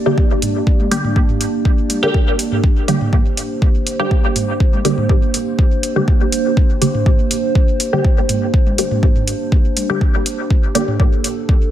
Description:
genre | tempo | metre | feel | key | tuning
dub techno | 122 BPM | 4/4 | straight | G minor | A4 = 441 Hz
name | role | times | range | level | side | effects
dark analog pad | sustained chords | 0.0-11.7 s | Bb3 to D5 | -21 LUFS | right 2 dB | chorus, phaser, sidechain pumping
filtered dub chord stab | stabs | 0.0-11.7 s | D3 to G4 | -20 LUFS | equal | phaser, cassette tape, sidechain pumping, dub echo
electronic kick drum | drums | 0.2-11.6 s | none | -14 LUFS | equal | none
electronic hi-hat | drums | 0.4-11.3 s | none | -22 LUFS | equal | none
electronic toms | percussion | 0.4-11.0 s | none | -24 LUFS | right 1 dB | sidechain pumping on toms, dub echo
room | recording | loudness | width
little or no reverb | none | -13 LUFS | side -11 dB against mid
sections
0.0-11.7 A section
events
filter sweep on synth stab 0.0-11.7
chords
0.0 Gm

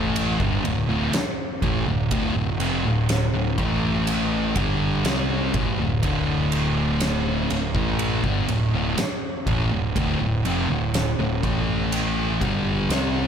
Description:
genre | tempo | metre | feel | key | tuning
stoner and doom metal | 61 BPM | 4/4 | straight | unclear | A4 = 443 Hz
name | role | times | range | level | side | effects
thick fuzz guitar | riff | 0.0-13.3 s | D2 to C4 | -26 LUFS | left 9 dB | distortion
thick fuzz guitar | riff | 0.0-13.3 s | D2 to C4 | -25 LUFS | right 8 dB | distortion
growling picked electric bass | bass | 0.0-13.3 s | D1 to C2 | -28 LUFS | equal | overdrive, tube saturation
oversized low-tuned drum kit | drums | 0.2-13.1 s | kick drum, ride cymbal, snare drum | -26 LUFS | equal | none
room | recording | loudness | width
small room ambience | none | -20 LUFS | side -8 dB against mid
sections
0.0-13.3 A section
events
none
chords
0.0 Dm; 3.6 A5; 4.6 D5; 11.4 A5; 12.4 D5

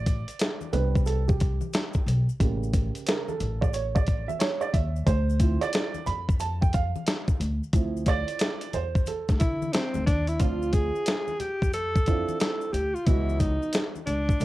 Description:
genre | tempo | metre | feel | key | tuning
hip hop, jazz-hop | 90 BPM | 4/4 | swing 64% on 16ths | unclear | A4 = 440 Hz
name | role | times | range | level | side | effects
dark upright piano | accompaniment | 0.0-14.4 s | C#3 to B5 | -32 LUFS | right 7 dB | cassette tape, plate reverb
upright bass | bass | 0.0-14.4 s | A1 to D3 | -28 LUFS | equal | none
dusty soul sampler-style drum kit | drums | 0.1-14.4 s | hi-hat, kick drum, snare drum | -25 LUFS | equal | cassette tape
maracas and congas | percussion | 0.1-14.4 s | none | -42 LUFS | left 9 dB | none
breathy alto saxophone | melody | 9.4-14.4 s | C4 to A4 | -29 LUFS | equal | cassette tape, plate reverb
room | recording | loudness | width
light reverb | home recording on cassette | -24 LUFS | side -17 dB against mid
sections
0.0-10.4 A section; 10.4-14.4 B section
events
upright piano solo 0.0-10.4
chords
0.0 Am11; 2.4 A7b9; 5.1 Dm9; 13.1 C#m11

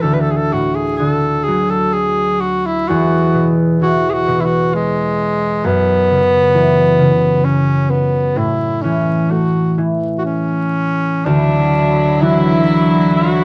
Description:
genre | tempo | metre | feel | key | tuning
celtic folk, Celtic slow air | 59-68 BPM | 3/4 | rubato | unclear | A4 = 440 Hz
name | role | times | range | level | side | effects
warm tenor saxophone | melody | 0.0-13.4 s | G#3 to B4 | -18 LUFS | equal | none
concert harp | accompaniment | 0.0-13.4 s | D2 to D4 | -18 LUFS | equal | none
warm studio string section | sustained chords | 11.3-13.4 s | D3 to E4 | -21 LUFS | equal | none
room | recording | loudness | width
moderate studio reverb, RT60 0.8 s | vinyl crackle | -15 LUFS | mono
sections
0.0-11.3 A section; 11.3-13.4 B section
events
none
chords
0.0 D; 2.9 E; 5.7 F#7sus4; 8.4 A; 11.3 Dadd9

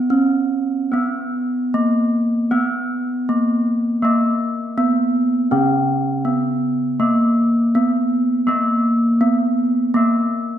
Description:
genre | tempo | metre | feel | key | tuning
gamelan | 80 BPM | 4/4 | uneven beats | unclear | A4 = 439 Hz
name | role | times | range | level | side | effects
gamelan-type bronze metallophone | melody | 0.0-10.6 s | Bb3 to Db4-30c | -18 LUFS | equal | none
gamelan-type bronze metallophone | accompaniment | 0.0-10.6 s | Db3-30c to Cb4+20c | -21 LUFS | equal | none
room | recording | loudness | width
wet recital hall reverb, RT60 1.5 s | none | -16 LUFS | side -10 dB against mid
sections
0.0-4.0 A section; 4.0-10.6 B section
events
none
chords
none

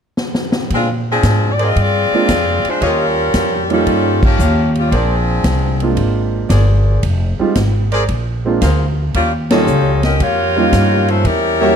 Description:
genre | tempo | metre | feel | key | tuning
jazz, big band swing | 114 BPM | 4/4 | swing 68% on 8ths | unclear | A4 = 440 Hz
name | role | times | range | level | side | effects
swinging big-band drum kit | drums | 0.2-11.4 s | crash cymbal, hi-hat, kick drum, ride cymbal, snare drum | -21 LUFS | equal | none
bright saxophone section | melody | 0.7-11.8 s | F3 to Eb5 | -16 LUFS | left 2 dB | none
upright bass | bass | 0.7-11.8 s | F1 to Bb2 | -16 LUFS | equal | none
clear trumpet section | stabs | 1.6-11.8 s | F4 to F5 | -20 LUFS | equal | none
warm baby grand piano | accompaniment | 2.1-11.8 s | G3 to Gb4 | -18 LUFS | right 5 dB | none
room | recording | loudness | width
light reverb | none | -12 LUFS | side -7 dB against mid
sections
0.7-11.8 A section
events
drum fill 0.2-0.7; band accent 4.1, 9.4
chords
0.0 N.C.; 0.7 Bb9; 2.8 Eb9; 4.9 Bb9; 7.0 Fm7; 8.1 Bb9; 9.1 Eb9; 11.2 Edim7

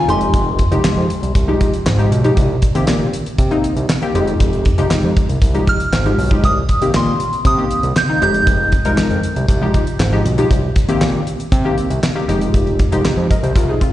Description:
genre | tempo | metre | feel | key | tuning
early-eighties boogie funk | 118 BPM | 4/4 | straight | F minor | A4 = 440 Hz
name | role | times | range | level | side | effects
soft synth bell | melody | 0.0-2.1, 5.7-10.2 s | C6 to G6 | -20 LUFS | right 1 dB | chorus, plate reverb, slapback echo, tape echo
funky polysynth comp | accompaniment | 0.0-13.9 s | Eb3 to Eb5 | -19 LUFS | left 2 dB | chorus, plate reverb, slapback echo
fat analog bass | bass | 0.1-13.8 s | F1 to C3 | -17 LUFS | equal | none
damped 70s drum kit | drums | 0.1-13.9 s | handclaps, hi-hat, kick drum, snare drum | -17 LUFS | equal | none
room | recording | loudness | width
light reverb | live gig heard through the venue's PA, recital hall reverb, nothing above 10.4 kHz | -13 LUFS | side -14 dB against mid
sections
0.0-13.9 A section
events
none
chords
0.1 Fm9; 2.4 Cm7; 4.2 Fm9; 6.4 Cm7; 8.2 Fm9; 10.5 Cm7; 12.3 Fm9

